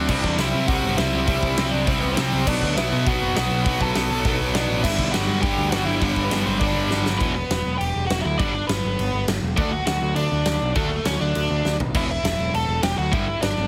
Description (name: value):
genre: punk rock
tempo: 202 BPM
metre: 4/4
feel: straight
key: unclear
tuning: A4 = 444 Hz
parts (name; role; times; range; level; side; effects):
- overdriven electric guitar; melody; 0.0-13.7 s; A3 to A5; -28 LUFS; equal; none
- distorted electric guitar; riff; 0.0-13.3 s; E2 to D4; -29 LUFS; equal; distortion
- tight distorted guitar; riff; 0.0-13.3 s; E2 to D4; -29 LUFS; equal; distortion
- growling picked electric bass; bass; 0.0-13.7 s; E1 to C3; -28 LUFS; equal; overdrive
- big rock drum kit; drums; 0.1-13.5 s; crash cymbal, hi-hat, kick drum, snare drum, toms; -28 LUFS; equal; none
room: little or no reverb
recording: heavily compressed radio sound, multiband compression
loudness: -22 LUFS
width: mono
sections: 0.0-7.2 A section; 7.2-13.7 B section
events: drum fill 6.9, 11.7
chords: 0.1 C; 2.5 Bm; 4.8 G; 7.2 Em; 8.4 G; 9.6 D; 11.9 Em; 13.1 G5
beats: | 0.09 0.39 0.69 0.98 | 1.28 1.58 1.88 2.17 | 2.47 2.77 3.06 3.36 | 3.66 3.95 4.25 4.55 | 4.84 5.14 5.43 5.73 | 6.03 6.32 6.62 6.91 | 7.21 7.50 7.80 8.10 | 8.39 8.69 8.99 9.28 | 9.58 9.88 10.17 10.47 | 10.77 11.06 11.36 11.65 | 11.95 12.25 12.54 12.84 | 13.13 13.43